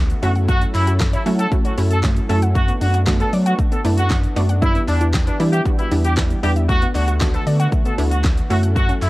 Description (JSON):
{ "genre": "dance-pop", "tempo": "116 BPM", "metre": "4/4", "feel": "straight", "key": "E dorian", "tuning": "A4 = 440 Hz", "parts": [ { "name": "wide unison pluck", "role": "accompaniment", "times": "0.0-9.1 s", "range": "G3 to F#4", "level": "-25 LUFS", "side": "right 2 dB", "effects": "none" }, { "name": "warm analog pad", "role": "sustained chords", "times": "0.0-9.1 s", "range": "D3 to A4", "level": "-28 LUFS", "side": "equal", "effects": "chorus, sidechain pumping" }, { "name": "warm sub bass", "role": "bass", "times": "0.0-9.1 s", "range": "D2 to F#3", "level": "-18 LUFS", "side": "equal", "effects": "sidechain pumping" }, { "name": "downlifter", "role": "sound effects", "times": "0.2-0.5 s", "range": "none", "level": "barely audible", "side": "none", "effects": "none" }, { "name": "pop drum kit", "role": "drums", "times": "0.1-9.1 s", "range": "handclaps, hi-hat, kick drum, shaker, snare drum", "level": "-20 LUFS", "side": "equal", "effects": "none" }, { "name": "clear horn section", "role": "melody", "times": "0.2-9.1 s", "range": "D4 to A4", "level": "-24 LUFS", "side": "equal", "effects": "sidechain pumping" }, { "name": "wide unison pluck", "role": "arpeggios", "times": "0.2-9.1 s", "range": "G3 to F#5", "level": "-29 LUFS", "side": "left 2 dB", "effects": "sidechain pumping, ping-pong delay" }, { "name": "group handclap", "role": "percussion", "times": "0.7-9.1 s", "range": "none", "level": "-37 LUFS", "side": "right 2 dB", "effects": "none" } ], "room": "little or no reverb", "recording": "worn, warbling old tape, cassette tape, warbly pitch drift", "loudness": "-15 LUFS", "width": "side -19 dB against mid", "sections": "0.0-9.1 A section", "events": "none", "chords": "0.2 F#m7; 2.6 Bm7/F#; 4.6 Em7; 6.7 D6; 8.5 F#m7" }